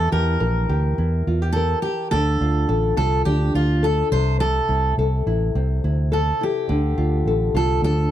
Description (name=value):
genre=acoustic pop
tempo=105 BPM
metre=4/4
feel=straight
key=D minor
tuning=A4 = 440 Hz
part: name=fingerpicked steel-string acoustic guitar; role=melody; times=0.0-8.1 s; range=F4 to C5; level=-24 LUFS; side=right 2 dB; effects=none
part: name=nylon-string guitar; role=accompaniment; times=0.0-8.1 s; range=C3 to Bb4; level=-24 LUFS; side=left 2 dB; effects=none
part: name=vintage muted fingered electric bass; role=bass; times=0.0-8.1 s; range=A1 to E2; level=-20 LUFS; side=right 1 dB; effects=none
room=small room ambience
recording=dry, close 1970s-style studio recording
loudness=-18 LUFS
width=side -12 dB against mid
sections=0.0-8.1 A section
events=none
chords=0.0 Edim; 2.1 Dm; 4.1 Am; 6.7 Dm